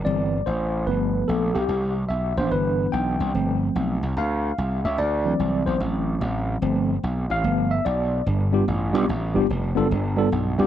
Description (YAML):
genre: uptempo gospel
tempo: 146 BPM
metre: 4/4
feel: swing 66% on 8ths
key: unclear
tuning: A4 = 439 Hz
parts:
  - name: tine electric piano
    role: accompaniment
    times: 0.0-10.7 s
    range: G2 to G5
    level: -23 LUFS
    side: left 1 dB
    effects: medium stereo tremolo
  - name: gritty slap bass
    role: bass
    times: 0.0-10.7 s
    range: F1 to D2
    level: -24 LUFS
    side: right 1 dB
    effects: overdrive
room: moderate concert hall reverb, RT60 1.8 s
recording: none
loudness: -21 LUFS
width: side -11 dB against mid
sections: 0.0-8.3 A section; 8.3-10.7 B section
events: tine electric piano solo 0.0-8.3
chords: 0.1 C/G; 0.9 G7; 1.7 Cmaj7; 3.3 G7sus4; 5.0 D7; 6.6 G7sus4; 7.4 G7